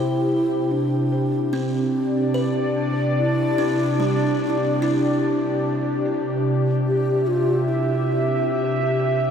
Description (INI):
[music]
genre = ambient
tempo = 73 BPM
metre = 4/4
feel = straight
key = C major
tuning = A4 = 440 Hz
[part]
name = mellow hollow wooden-headed alto flute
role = melody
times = 0.0-8.5 s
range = C4 to G4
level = -24 LUFS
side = equal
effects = analog delay
[part]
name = airy breathy pad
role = sustained chords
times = 0.0-9.3 s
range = C3 to G5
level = -22 LUFS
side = left 1 dB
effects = chorus
[part]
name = buzzing kalimba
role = arpeggios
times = 0.0-6.9 s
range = G3 to C5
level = -31 LUFS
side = equal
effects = analog delay
[part]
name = analog drone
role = drone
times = 0.0-9.3 s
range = C3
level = -29 LUFS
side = right 1 dB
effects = none
[sound]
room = wet huge ambient reverb, RT60 8.2 s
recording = dreamy mix soaked in reverb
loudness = -19 LUFS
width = side -7 dB against mid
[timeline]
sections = 0.0-9.3 A section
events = filter sweep on analog synth pad 0.0-9.3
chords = 0.0 C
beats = 0.71 1.53 2.35 | 3.17 4.00 4.82 5.64 | 6.46 7.29 8.11 8.93